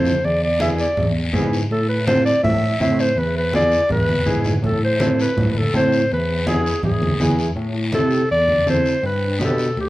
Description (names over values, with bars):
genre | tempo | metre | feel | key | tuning
latin, cumbia | 164 BPM | 4/4 | straight | unclear | A4 = 441 Hz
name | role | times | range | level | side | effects
mellow clarinet | melody | 0.0-9.9 s | G4 to E5 | -20 LUFS | equal | none
mellow electric guitar | accompaniment | 0.0-9.7 s | B3 to C5 | -24 LUFS | right 1 dB | none
barky tine electric piano | bass | 0.0-9.9 s | D2 to C3 | -22 LUFS | equal | ensemble chorus
congas | percussion | 0.0-9.9 s | none | -24 LUFS | equal | none
guiro | percussion | 0.1-9.9 s | none | -32 LUFS | left 4 dB | none
room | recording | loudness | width
moderate large studio reverb, RT60 1.3 s | worn, warbling old tape, cassette tape, warbly pitch drift | -16 LUFS | side -16 dB against mid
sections
0.0-7.6 A section; 7.6-9.9 B section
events
none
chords
0.2 E7; 1.7 Am; 3.2 E7; 4.6 Am; 6.1 E; 7.6 Am; 9.0 G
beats
| 0.24 0.61 0.98 1.34 | 1.71 2.08 2.44 2.81 | 3.18 3.54 3.91 4.28 | 4.64 5.01 5.38 5.74 | 6.11 6.47 6.84 7.21 | 7.57 7.94 8.31 8.67 | 9.04 9.41 9.78